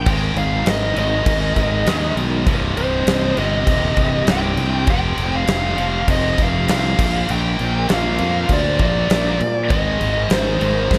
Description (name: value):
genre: hard rock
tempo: 100 BPM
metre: 4/4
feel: straight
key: unclear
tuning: A4 = 440 Hz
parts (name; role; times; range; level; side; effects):
- high-gain lead guitar; melody; 0.0-11.0 s; C5 to G5; -24 LUFS; equal; distortion, analog delay
- lush unison pad; sustained chords; 0.0-11.0 s; F3 to Eb5; -34 LUFS; equal; none
- fuzz fingered electric bass; bass; 0.0-11.0 s; C1 to Bb2; -24 LUFS; equal; overdrive
- high-gain distorted guitar; riff; 0.1-11.0 s; C2 to Bb3; -29 LUFS; equal; distortion
- high-gain distorted guitar; riff; 0.1-11.0 s; C2 to Bb3; -27 LUFS; equal; distortion
- huge arena drum kit; drums; 0.1-11.0 s; crash cymbal, kick drum, snare drum; -24 LUFS; equal; none
room: small room ambience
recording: none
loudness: -18 LUFS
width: mono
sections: 0.0-11.0 A section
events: none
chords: 0.1 Ab5; 2.5 Cm; 4.9 F5; 7.0 Bb; 9.7 Ab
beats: | 0.06 0.67 1.27 1.87 | 2.47 3.07 3.67 4.28 | 4.88 5.48 6.08 6.69 | 7.29 7.89 8.50 9.10 | 9.71 10.31 10.91